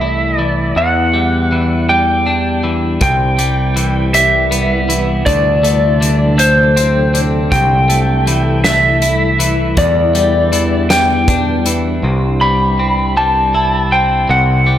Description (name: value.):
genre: post-rock.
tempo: 53 BPM (dotted quarters).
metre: 6/8.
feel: straight.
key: C lydian.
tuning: A4 = 440 Hz.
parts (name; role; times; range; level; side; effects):
electric slide guitar; melody; 0.0-14.8 s; C5 to B5; -14 LUFS; equal; analog delay.
twelve-string electric guitar; arpeggios; 0.0-14.8 s; E2 to E4; -18 LUFS; left 2 dB; analog delay.
growling picked electric bass; bass; 0.0-14.8 s; C2 to E2; -16 LUFS; equal; overdrive.
granular cloud pad; sustained chords; 4.0-12.0 s; C3 to B4; -24 LUFS; right 1 dB; built-in reverb.
loose indie drum kit; drums; 3.0-11.8 s; hi-hat, kick drum, snare drum; -19 LUFS; equal; none.
room: moderate lush hall reverb, RT60 2.4 s.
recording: none.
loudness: -11 LUFS.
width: side -11 dB against mid.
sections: 0.0-12.0 A section; 12.0-14.8 B section.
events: none.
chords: 0.0 Am/C; 0.8 Em7; 3.0 Cmaj7; 5.3 D7; 7.5 Am7/C; 9.8 Em7; 12.0 C.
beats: | 0.76 1.89 | 3.02 4.14 | 5.27 6.40 | 7.52 8.65 | 9.78 10.91 | 12.03 13.16 | 14.29.